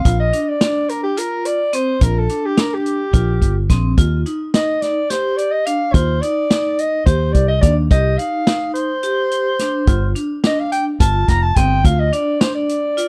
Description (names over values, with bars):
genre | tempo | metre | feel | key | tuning
progressive instrumental, band music in an uneven meter | 214 BPM (eighths) | 7/8 | straight | unclear | A4 = 440 Hz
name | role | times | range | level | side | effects
dark soprano saxophone | melody | 0.0-13.1 s | G4 to Bb5 | -22 LUFS | equal | none
fingered electric bass | bass | 0.0-12.1 s | F1 to Eb2 | -19 LUFS | equal | none
vibraphone with hard mallets | arpeggios | 0.1-13.1 s | C4 to G4 | -25 LUFS | equal | none
vintage drum kit | drums | 0.1-13.1 s | hi-hat, kick drum, snare drum | -18 LUFS | equal | none
room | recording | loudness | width
small room ambience | dry, close 1970s-style studio recording | -17 LUFS | mono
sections
0.0-13.1 A section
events
soprano saxophone solo 0.0-13.1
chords
0.1 Bb69; 4.0 Eb6; 7.9 Cm; 9.9 G5; 11.8 Dm